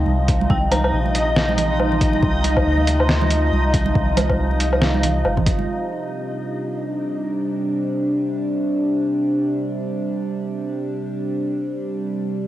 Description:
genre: deep dubstep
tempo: 139 BPM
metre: 4/4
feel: swing 58% on 16ths, half-time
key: C minor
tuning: A4 = 439 Hz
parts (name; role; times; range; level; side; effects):
- overtone-sweeping drone; sustained chords; 0.0-12.5 s; C3 to F4; -23 LUFS; equal; chorus, built-in reverb, cassette tape
- soft dub sub bass; bass; 0.0-5.7 s; G1 to D2; -21 LUFS; equal; tube saturation
- backwards swelling texture; texture; 0.0-5.7 s; Eb4 to Eb5; -24 LUFS; equal; built-in reverb, cassette tape
- congas; percussion; 0.1-5.7 s; none; -27 LUFS; right 6 dB; none
- electronic kick drum; drums; 0.3-5.6 s; none; -21 LUFS; equal; overdrive, cassette tape
- trip hop sampler-style drum kit; drums; 0.3-5.6 s; hi-hat, snare drum, woodblock; -22 LUFS; equal; low-pass filter on hats, cassette tape, low-pass filter on perc, low-pass filter on snare
- dark detuned synth bell; melody; 0.5-0.9 s; G5 to Bb5; -28 LUFS; equal; chorus, tremolo, cassette tape, dub echo
room: moderate spring reverb, RT60 1.4 s, digital ambience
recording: home recording on cassette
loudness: -18 LUFS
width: side -14 dB against mid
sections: 0.0-5.7 A section; 5.7-12.5 B section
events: none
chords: 0.0 Cm; 5.7 C5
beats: 0.07 | 0.50 0.93 1.36 1.79 | 2.23 2.66 3.09 3.52 | 3.95 4.38 4.82 5.25 | 5.68 6.11 6.54 6.97 | 7.41 7.84 8.27 8.70 | 9.13 9.56 10.00 10.43 | 10.86 11.29 11.72 12.15

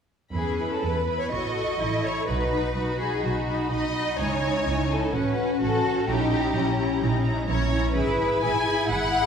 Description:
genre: classical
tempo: 126 BPM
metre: 4/4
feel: rubato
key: unclear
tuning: A4 = 438 Hz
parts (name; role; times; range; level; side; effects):
- warm symphonic violin section; melody; 0.3-9.3 s; F#5 to C#6; -33 LUFS; left 1 dB; none
- rich symphonic violin section; second line; 0.3-9.3 s; F#4 to G#5; -27 LUFS; left 2 dB; none
- rich symphonic viola section; accompaniment; 0.3-9.3 s; C#4 to B4; -30 LUFS; left 1 dB; none
- rich chamber cello section; bass; 0.3-9.3 s; B3 to F#4; -30 LUFS; equal; none
- warm symphonic double bass section; bass; 0.3-9.3 s; G#1 to E2; -28 LUFS; right 2 dB; none
room: wet scoring stage reverb, RT60 1.6 s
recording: heard from further back in the room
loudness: -22 LUFS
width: side -7 dB against mid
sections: 0.3-9.3 A section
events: none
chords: 0.3 E5; 1.3 A; 2.3 B; 4.2 C#m; 5.1 F#m/A; 6.1 A#dim7; 7.9 E/G#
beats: | 0.33 0.83 1.32 1.80 | 2.28 2.76 3.24 3.72 | 4.19 4.67 5.14 5.61 | 6.08 6.54 7.01 7.48 | 7.95 8.42 8.90

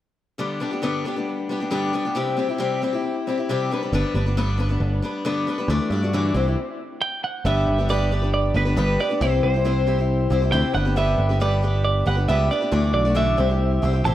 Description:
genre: folk rock and heartland rock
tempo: 136 BPM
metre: 4/4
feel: straight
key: G major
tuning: A4 = 440 Hz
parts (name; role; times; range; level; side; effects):
- picked steel-string acoustic guitar; accompaniment; 0.4-14.1 s; G2 to D5; -23 LUFS; left 3 dB; analog delay
- picked electric bass; bass; 3.9-14.1 s; G1 to G2; -21 LUFS; right 1 dB; none
- twelve-string electric guitar; melody; 7.0-14.1 s; B4 to A5; -24 LUFS; right 4 dB; analog delay
room: light reverb, studio ambience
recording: echo-heavy mix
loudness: -19 LUFS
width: side -13 dB against mid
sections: 0.4-7.4 A section; 7.4-14.1 B section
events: stop 6.6-7.4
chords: 0.4 G; 2.2 C; 3.7 G; 5.7 Dadd9; 6.3 C; 7.4 G; 9.2 C; 10.7 G; 12.7 Dadd9; 13.4 C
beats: | 0.38 0.82 1.26 1.71 | 2.15 2.59 3.04 3.48 | 3.92 4.36 4.80 5.25 | 5.69 6.13 6.57 7.01 | 7.45 7.89 8.33 8.77 | 9.21 9.65 10.09 10.52 | 10.96 11.40 11.84 12.28 | 12.72 13.16 13.60 14.04

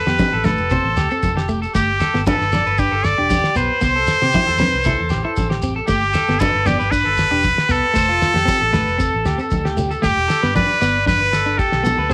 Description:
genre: highlife guitar band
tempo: 116 BPM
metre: 4/4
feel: swing 53% on 16ths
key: G mixolydian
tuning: A4 = 440 Hz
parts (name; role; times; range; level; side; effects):
- trumpet with straight mute; melody; 0.0-12.1 s; G4 to D5; -20 LUFS; equal; cassette tape
- electric guitar at the edge of break-up; arpeggios; 0.0-12.1 s; F4 to D5; -28 LUFS; equal; spring reverb, cassette tape, plate reverb, analog delay
- clean electric guitar; accompaniment; 0.1-12.1 s; A3 to E4; -27 LUFS; equal; cassette tape
- vintage muted fingered electric bass; bass; 0.1-12.1 s; E1 to C3; -27 LUFS; equal; none
- cloth-damped thuddy drum kit; drums; 0.1-12.1 s; kick drum, snare drum; -25 LUFS; equal; none
- shekere; percussion; 0.1-12.1 s; none; -32 LUFS; equal; none
- congas; percussion; 0.2-12.1 s; none; -26 LUFS; equal; none
room: moderate booth ambience, RT60 0.2 s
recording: home recording on cassette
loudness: -17 LUFS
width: mono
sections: 0.0-10.0 A section; 10.0-12.1 B section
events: none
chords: 0.0 F; 1.7 G; 3.8 C; 5.9 G; 8.0 F; 10.0 G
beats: 0.19 0.71 1.23 | 1.75 2.26 2.78 3.30 | 3.82 4.33 4.85 5.37 | 5.89 6.41 6.93 7.44 | 7.96 8.48 9.00 9.52 | 10.04 10.56 11.07 11.59 | 12.11

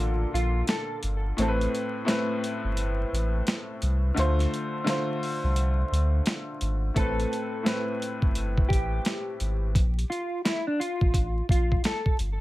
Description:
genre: hip hop, boom-bap hip-hop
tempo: 86 BPM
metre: 4/4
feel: swing 62% on 16ths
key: A minor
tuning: A4 = 441 Hz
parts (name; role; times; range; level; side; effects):
- mellow electric guitar; melody; 0.0-1.0, 7.0-12.2 s; D4 to A4; -32 LUFS; equal; analog chorus, high-pass filter, low-pass filter, digital delay
- clear upright piano; accompaniment; 0.0-9.8 s; A2 to C5; -30 LUFS; left 1 dB; cassette tape, high-pass filter, low-pass filter, plate reverb
- warm sub bass; bass; 0.0-12.4 s; G1 to D2; -26 LUFS; equal; none
- boom bap sampler-style drum kit; drums; 0.4-12.4 s; hi-hat, kick drum, snare drum; -26 LUFS; equal; none
room: light reverb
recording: vinyl crackle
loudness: -24 LUFS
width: side -17 dB against mid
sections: 0.0-12.4 A section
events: break 0.0-7.0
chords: 0.0 Bbmaj7; 1.4 Amadd9; 4.2 Dm7; 7.0 Amadd9; 9.8 Bb5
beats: 0.68 | 1.38 2.08 2.77 3.47 | 4.17 4.87 5.56 6.26 | 6.96 7.66 8.36 9.05 | 9.75 10.45 11.15 11.84

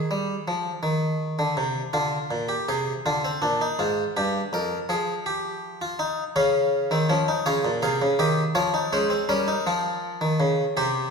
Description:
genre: classical, baroque-style 3-part fugue for harpsichord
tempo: 54 BPM (dotted quarters)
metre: 12/8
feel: straight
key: unclear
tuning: A4 = 441 Hz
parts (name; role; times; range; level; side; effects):
- harpsichord; solo; 0.0-11.1 s; F2 to F5; -22 LUFS; equal; none
room: wet recital hall reverb, RT60 1.6 s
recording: heard from further back in the room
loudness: -22 LUFS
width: side -5 dB against mid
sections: 0.0-11.1 A section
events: none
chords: 0.0 Ab5; 1.9 Ddim; 4.2 G7(no3); 6.4 Bbm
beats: 0.84 | 1.95 3.06 4.17 5.27 | 6.37 7.46 8.56 9.67 | 10.79

